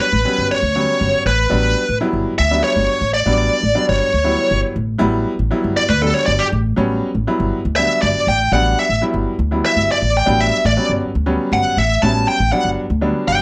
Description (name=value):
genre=electric jazz fusion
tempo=240 BPM (eighths)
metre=7/8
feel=straight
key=A mixolydian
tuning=A4 = 440 Hz
part: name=bluesy overdriven lead guitar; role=melody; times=0.0-13.4 s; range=G4 to A5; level=-19 LUFS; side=equal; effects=distortion
part: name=bright concert grand piano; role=accompaniment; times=0.0-13.4 s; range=F#3 to E4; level=-23 LUFS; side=equal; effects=none
part: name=upright bass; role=bass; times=0.1-13.4 s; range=G1 to D2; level=-22 LUFS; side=equal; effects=none
room=light reverb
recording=none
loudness=-17 LUFS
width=mono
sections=0.0-13.4 A section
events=lead electric guitar solo 0.0-13.4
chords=0.0 A13sus4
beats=0.00 0.25 0.50 0.75 1.00 1.25 | 1.51 1.76 2.01 2.26 2.51 2.76 3.01 | 3.26 3.51 3.76 4.01 4.26 4.51 4.76 | 5.01 5.26 5.51 5.76 6.01 6.26 6.51 | 6.76 7.01 7.26 7.52 7.77 8.02 8.27 | 8.52 8.77 9.02 9.27 9.52 9.77 10.02 | 10.27 10.52 10.77 11.02 11.27 11.52 11.77 | 12.02 12.27 12.52 12.77 13.02 13.27